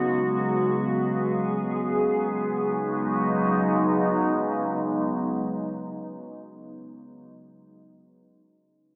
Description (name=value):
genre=hip hop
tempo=free time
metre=none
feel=none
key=B major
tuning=A4 = 440 Hz
part: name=glassy FM pad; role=sustained chords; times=0.0-6.8 s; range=C#3 to G#4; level=-26 LUFS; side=equal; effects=ensemble chorus, built-in reverb, low-pass filter
room=wet digital room reverb, RT60 1.1 s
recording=worn, warbling old tape, cassette tape, warbly pitch drift, small speaker sound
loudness=-25 LUFS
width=mono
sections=0.0-2.5 A section; 2.5-6.1 B section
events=filter sweep on ambient pad 0.0-2.5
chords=0.0 C#7sus4; 2.5 B69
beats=free time